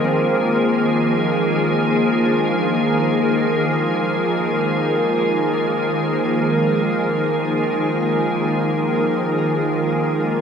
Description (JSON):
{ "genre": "ambient", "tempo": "free time", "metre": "none", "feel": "none", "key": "unclear", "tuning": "A4 = 440 Hz", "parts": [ { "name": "soft additive organ-like pad", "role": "sustained chords", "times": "0.0-10.4 s", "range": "Eb3 to Ab4", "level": "-17 LUFS", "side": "equal", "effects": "ensemble chorus, built-in reverb, shimmer reverb" }, { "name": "Celtic harp", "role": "arpeggios", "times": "0.0-10.4 s", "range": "C4 to Bb5", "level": "-33 LUFS", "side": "left 2 dB", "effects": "tape echo, shimmer reverb" }, { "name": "organ-like drone", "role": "drone", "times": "0.0-10.4 s", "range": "Eb3 to Ab3", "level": "-24 LUFS", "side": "right 1 dB", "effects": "ensemble chorus, built-in reverb" } ], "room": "wet spring reverb, RT60 2.3 s", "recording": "echo-heavy mix", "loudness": "-16 LUFS", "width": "side -7 dB against mid", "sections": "0.0-10.4 A section", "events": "fade-out on harp 0.0-10.4", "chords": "0.0 Bb7sus4" }